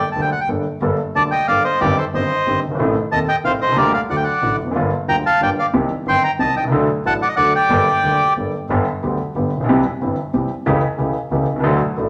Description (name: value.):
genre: tango.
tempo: 183 BPM.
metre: 3/4.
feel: rubato.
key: G minor, G major from 8.7 s.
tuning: A4 = 440 Hz.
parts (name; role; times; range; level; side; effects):
bandoneon; melody; 0.0-8.3 s; G4 to C6; -19 LUFS; equal; none.
warm grand piano; accompaniment; 0.2-12.1 s; Eb1 to A4; -21 LUFS; equal; none.
clear double bass; bass; 0.2-12.1 s; F1 to Eb2; -30 LUFS; equal; none.
room: wet studio reverb, RT60 0.9 s.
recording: none.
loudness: -18 LUFS.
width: mono.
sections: 0.8-8.7 A section; 8.7-12.1 B section.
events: none.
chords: 0.0 Gmadd9; 1.8 Cm/G; 2.8 Adim; 3.8 Gm/D; 4.1 D; 4.8 Gm7; 5.7 Cm; 6.7 D; 7.7 Gmadd9; 8.7 G; 9.7 C; 10.7 A7/C#.